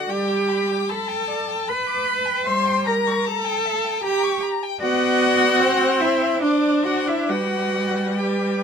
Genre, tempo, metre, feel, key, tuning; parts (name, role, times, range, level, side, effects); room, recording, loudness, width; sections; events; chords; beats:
classical, slow romantic movement for string quartet; 75 BPM; 3/4; uneven beats, rubato; G major; A4 = 445 Hz
rich violin; melody; 0.0-8.6 s; D5 to C6; -25 LUFS; left 9 dB
clear violin; second line; 0.0-8.6 s; B4 to D6; -28 LUFS; left 5 dB
clear cello; bass; 0.0-8.6 s; D4 to C5; -22 LUFS; right 4 dB
rich viola; accompaniment; 0.1-8.6 s; G3 to D4; -23 LUFS; right 1 dB
light reverb; -18 LUFS; side -7 dB against mid
0.0-8.6 A section
0.1 G; 2.5 Gm; 4.8 Bm; 5.6 C; 6.4 D9; 7.3 G
| 0.09 0.89 1.68 | 2.46 3.26 4.04 | 4.82 5.61 6.43 | 7.30 8.19